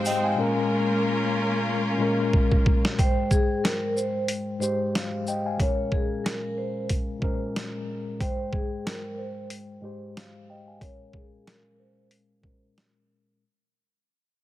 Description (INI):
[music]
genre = hip hop, boom-bap hip-hop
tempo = 92 BPM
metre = 4/4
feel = swing 56% on 16ths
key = unclear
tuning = A4 = 438 Hz
[part]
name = mellow tine electric piano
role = accompaniment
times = 0.0-13.4 s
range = Ab2 to Ab5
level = -28 LUFS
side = left 2 dB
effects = medium stereo tremolo, cassette tape, high-pass filter, low-pass filter
[part]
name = bright studio string section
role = sustained chords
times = 0.0-3.0 s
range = Ab3 to G5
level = -28 LUFS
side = equal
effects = high-pass filter, low-pass filter
[part]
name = boom bap sampler-style drum kit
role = drums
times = 0.1-12.9 s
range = hi-hat, kick drum, shaker, snare drum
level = -25 LUFS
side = equal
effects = none
[part]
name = vibraphone with soft mallets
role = melody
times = 3.0-12.6 s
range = Ab4 to Db5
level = -31 LUFS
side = equal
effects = high-pass filter, low-pass filter
[sound]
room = light reverb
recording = heavily compressed radio sound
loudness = -23 LUFS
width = side -14 dB against mid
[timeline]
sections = 0.0-3.0 A section; 3.0-13.4 B section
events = drums muted 0.4-3.0; drum fill 2.3-3.0; fade-out 3.0-13.4; filter sweep 3.0-13.4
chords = 0.4 Bbm7; 3.0 Abmaj7; 5.6 Bbm7; 8.2 Abmaj7; 10.8 Bbm7